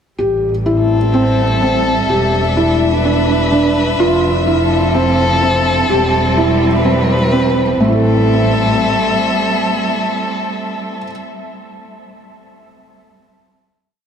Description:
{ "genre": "piano and strings electronica", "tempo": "126 BPM", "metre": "4/4", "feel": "straight", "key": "A minor", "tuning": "A4 = 440 Hz", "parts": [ { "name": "rich string quartet", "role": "sustained chords", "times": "0.2-11.2 s", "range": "F3 to E5", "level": "-17 LUFS", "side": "left 1 dB", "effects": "none" }, { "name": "felt-muted upright piano", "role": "riff", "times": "0.2-11.1 s", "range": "A3 to A4", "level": "-16 LUFS", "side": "equal", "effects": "wide subtle chorus, diffuse ambient delay" }, { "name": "warm studio double bass section", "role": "bass", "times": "0.2-9.2 s", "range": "E1 to A1", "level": "-18 LUFS", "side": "equal", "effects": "none" } ], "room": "wet cathedral reverb, RT60 6.1 s", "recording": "dreamy mix soaked in reverb", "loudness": "-12 LUFS", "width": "side -7 dB against mid", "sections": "0.2-7.8 build; 7.8-11.6 final chord", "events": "build-up 0.2-7.8", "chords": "0.2 Am7; 2.1 Em7; 4.0 Fmaj7; 5.9 Cmaj7/E; 7.8 Am7" }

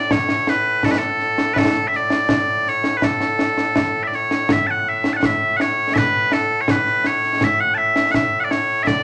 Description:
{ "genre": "scottish traditional, Scottish pipe music", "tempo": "82 BPM", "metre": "2/4", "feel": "straight", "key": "A major", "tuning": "A4 = 440 Hz", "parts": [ { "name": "loud bright bagpipes", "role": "melody", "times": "0.0-9.0 s", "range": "A2 to A5", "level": "-20 LUFS", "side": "equal", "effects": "none" }, { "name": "concert snare drum and concert bass drum", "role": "drums", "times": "0.1-9.0 s", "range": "none", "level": "-23 LUFS", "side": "equal", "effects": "none" } ], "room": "wet club reverb, RT60 0.7 s", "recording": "nothing above 10.7 kHz", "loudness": "-19 LUFS", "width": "mono", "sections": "0.0-4.5 A section; 4.5-9.0 B section", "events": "none", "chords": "none" }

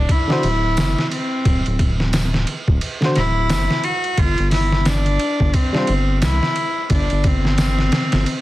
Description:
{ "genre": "trip hop", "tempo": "88 BPM", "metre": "4/4", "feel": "swing 60% on 16ths", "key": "unclear", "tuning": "A4 = 439 Hz", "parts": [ { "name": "rich cello", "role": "melody", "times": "0.0-8.4 s", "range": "C4 to F#4", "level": "-22 LUFS", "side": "equal", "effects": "vintage 12-bit sampler grit, tape echo" }, { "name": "round analog bass", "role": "bass", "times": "0.0-8.3 s", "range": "D1 to C2", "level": "-19 LUFS", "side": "equal", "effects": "none" }, { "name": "trip hop sampler-style drum kit", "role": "drums", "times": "0.1-8.4 s", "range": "hi-hat, kick drum, ride cymbal, snare drum", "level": "-20 LUFS", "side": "equal", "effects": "none" }, { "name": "overdriven reed electric piano", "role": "accompaniment", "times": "0.3-5.9 s", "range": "D3 to C5", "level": "-24 LUFS", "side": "equal", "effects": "tremolo, vintage 12-bit sampler grit" }, { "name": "tambourine", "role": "percussion", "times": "0.8-7.7 s", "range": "none", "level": "-37 LUFS", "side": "left 1 dB", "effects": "none" } ], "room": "little or no reverb", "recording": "dense, heavily limited modern master, vinyl crackle", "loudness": "-16 LUFS", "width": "side -16 dB against mid", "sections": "0.0-8.4 A section", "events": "none", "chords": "0.0 D; 4.2 Gsus4" }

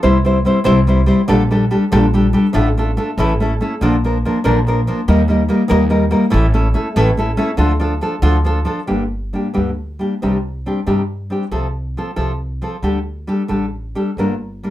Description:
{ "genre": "mexican folk, mariachi", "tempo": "88-97 BPM (dotted quarters)", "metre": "6/8", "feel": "rubato", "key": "D minor, G minor from 8.9 s", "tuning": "A4 = 440 Hz", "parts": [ { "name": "nylon-string guitar", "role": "accompaniment", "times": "0.0-14.7 s", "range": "G2 to C5", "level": "-15 LUFS", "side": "equal", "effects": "none" }, { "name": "upright bass", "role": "bass", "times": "0.0-14.6 s", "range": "G1 to G2", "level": "-18 LUFS", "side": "equal", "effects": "none" } ], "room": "moderate studio ambience, RT60 0.5 s", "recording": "none", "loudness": "-14 LUFS", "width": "side -14 dB against mid", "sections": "0.0-8.9 A section; 8.9-14.7 B section", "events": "none", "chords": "0.0 C; 1.3 Gmadd9/Bb; 2.5 Dm/A; 3.2 A; 3.8 Bb; 5.1 Eb; 6.3 A; 7.6 Dm; 8.9 Gm; 10.2 Cmadd9; 11.5 F/C; 12.8 Dsus4; 14.2 Gm" }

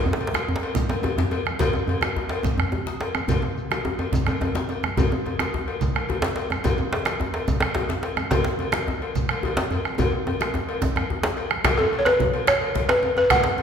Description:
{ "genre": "west african traditional, West African drum ensemble", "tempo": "143 BPM (dotted quarters)", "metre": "12/8", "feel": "straight", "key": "unclear", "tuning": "A4 = 440 Hz", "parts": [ { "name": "congas", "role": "percussion", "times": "0.1-13.4 s", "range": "none", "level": "-31 LUFS", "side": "right 3 dB", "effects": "none" }, { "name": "djembe", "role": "percussion", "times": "0.1-13.6 s", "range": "none", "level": "-27 LUFS", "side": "equal", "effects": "none" }, { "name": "shekere", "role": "percussion", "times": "0.1-13.4 s", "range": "none", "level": "-38 LUFS", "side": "left 1 dB", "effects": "none" }, { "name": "cowbell", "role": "percussion", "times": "0.2-13.6 s", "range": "none", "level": "-30 LUFS", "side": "left 3 dB", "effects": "none" }, { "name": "bombo", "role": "percussion", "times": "0.3-13.4 s", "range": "none", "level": "-26 LUFS", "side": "right 1 dB", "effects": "none" }, { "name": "djembe", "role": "percussion", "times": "0.3-13.4 s", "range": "none", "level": "-30 LUFS", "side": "left 3 dB", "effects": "none" }, { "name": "balafon", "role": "melody", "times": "11.8-13.6 s", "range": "A4 to F#5", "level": "-20 LUFS", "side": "equal", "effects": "none" } ], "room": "wet recital hall reverb, RT60 1.6 s", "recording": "recorded in a church or concert hall", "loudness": "-21 LUFS", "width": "side -7 dB against mid", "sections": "0.0-11.6 A section; 11.6-13.6 B section", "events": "drum fill 10.0-11.6", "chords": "none" }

